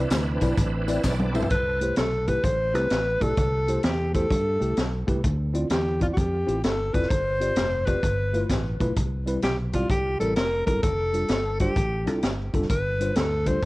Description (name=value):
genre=uptempo gospel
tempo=129 BPM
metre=4/4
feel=swing 66% on 8ths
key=C major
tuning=A4 = 440 Hz
part: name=tine electric piano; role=accompaniment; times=0.0-13.6 s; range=G2 to E5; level=-30 LUFS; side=left 1 dB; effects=medium stereo tremolo, cassette tape
part: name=bright tonewheel organ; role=sustained chords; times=0.0-1.8 s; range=E3 to D5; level=-31 LUFS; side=right 2 dB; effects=fast rotary speaker, overdrive, chorus vibrato, cassette tape
part: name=fingered electric bass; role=bass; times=0.0-13.7 s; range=F1 to G2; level=-28 LUFS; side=equal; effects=none
part: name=swinging big-band drum kit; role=drums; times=0.1-13.7 s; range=hi-hat, kick drum, snare drum, toms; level=-26 LUFS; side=equal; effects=cassette tape
part: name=handclaps and tambourine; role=percussion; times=0.1-1.4 s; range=none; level=-40 LUFS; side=left 4 dB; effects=none
part: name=breathy alto saxophone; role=melody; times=1.5-13.7 s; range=F4 to C5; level=-26 LUFS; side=equal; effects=cassette tape, analog delay
room=small room reverb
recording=home recording on cassette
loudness=-22 LUFS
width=side -20 dB against mid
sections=0.0-1.5 A section; 1.5-13.7 B section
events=drum fill 1.0-1.5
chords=0.0 Cmaj9; 1.5 C6; 3.4 Am7/C; 5.2 Dm9; 7.1 G7sus4; 8.0 G13; 9.0 Cmaj7; 9.9 C7; 10.8 F69; 12.7 G7(no3)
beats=0.11 0.58 1.04 | 1.51 1.98 2.44 2.91 | 3.38 3.84 4.31 4.77 | 5.24 5.71 6.17 6.64 | 7.10 7.57 8.03 8.50 | 8.97 9.43 9.90 10.36 | 10.83 11.29 11.76 12.23 | 12.70 13.16 13.63